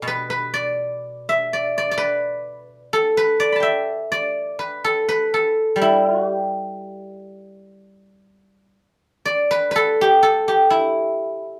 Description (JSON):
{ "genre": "chinese traditional, Chinese solo plucked strings", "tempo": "62 BPM", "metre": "2/4", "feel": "rubato", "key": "G gong mode", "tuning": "A4 = 440 Hz", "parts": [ { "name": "guzheng", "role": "solo", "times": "0.0-11.6 s", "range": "B2 to B5", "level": "-20 LUFS", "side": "equal", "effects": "none" } ], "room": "light reverb", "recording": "band playing live in one room", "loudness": "-20 LUFS", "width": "mono", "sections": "0.0-7.8 A section; 7.8-11.6 B section", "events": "none", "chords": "none", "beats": "| 0.05 1.02 | 1.98 2.92 | 3.87 4.82 | 5.78 6.77 | 7.77 8.76 | 9.74 10.70" }